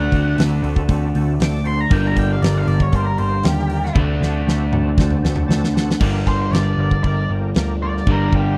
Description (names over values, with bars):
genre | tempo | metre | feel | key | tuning
blues rock power trio and southern rock | 117 BPM | 4/4 | straight | G minor | A4 = 438 Hz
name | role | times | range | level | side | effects
octave-fuzz lead guitar | melody | 0.0-8.6 s | G4 to D6 | -28 LUFS | equal | distortion
overdriven tonewheel organ | sustained chords | 0.0-8.5 s | Bb3 to A5 | -33 LUFS | equal | chorus vibrato, lush chorus
crunchy overdriven guitar | riff | 0.0-8.6 s | G2 to D4 | -23 LUFS | equal | none
vintage muted picked electric bass | bass | 0.0-8.6 s | G1 to Eb2 | -23 LUFS | equal | none
huge arena drum kit | drums | 0.1-8.5 s | crash cymbal, hi-hat, kick drum, snare drum, toms | -21 LUFS | equal | none
room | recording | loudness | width
small room reverb | dry, close 1970s-style studio recording | -18 LUFS | mono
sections
0.0-6.0 A section; 6.0-8.6 A section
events
lead electric guitar solo 0.0-6.0, 6.0-8.6; drum fill 4.0-6.0; tonewheel organ fill 5.3-6.0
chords
0.0 D7; 1.9 Gm; 4.0 D7; 6.0 Gm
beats
0.38 0.89 1.41 | 1.92 2.43 2.94 3.46 | 3.97 4.48 4.99 5.51 | 6.02 6.54 7.05 7.57 | 8.08